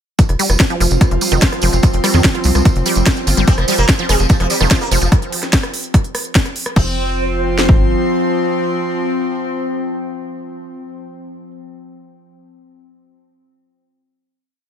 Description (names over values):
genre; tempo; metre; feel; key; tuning
psychedelic trance; 146 BPM; 4/4; straight; unclear; A4 = 440 Hz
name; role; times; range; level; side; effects
evolving wavetable pad; sustained chords; 0.6-10.9 s; F3 to C4; -23 LUFS; left 2 dB; chorus, built-in reverb, sidechain pumping
wide unison pluck; riff; 0.2-7.0 s; Eb3 to F4; -21 LUFS; equal; auto-pan, sidechain pumping, digital delay
techno drum kit; drums; 0.2-7.8 s; kick drum, snare drum; -12 LUFS; equal; none
techno drum kit; drums; 0.2-6.8 s; crash cymbal, hi-hat, rim click, snare drum; -20 LUFS; equal; none
tambourine; percussion; 0.2-5.1 s; none; -24 LUFS; right 4 dB; none
airy breathy pad; texture; 0.2-10.8 s; F4 to C6; -24 LUFS; right 3 dB; chorus, sidechain pumping
tight sequencer bass; bass; 0.3-8.0 s; F1 to F2; -16 LUFS; equal; none
sitar; melody; 3.5-11.5 s; F3 to C4; -23 LUFS; right 1 dB; phaser, sidechain pumping, digital delay
room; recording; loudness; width
light reverb, digital ambience; none; -13 LUFS; side -9 dB against mid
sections
0.2-6.8 drop; 6.8-10.1 final chord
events
drop 0.2-6.8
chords
0.2 F5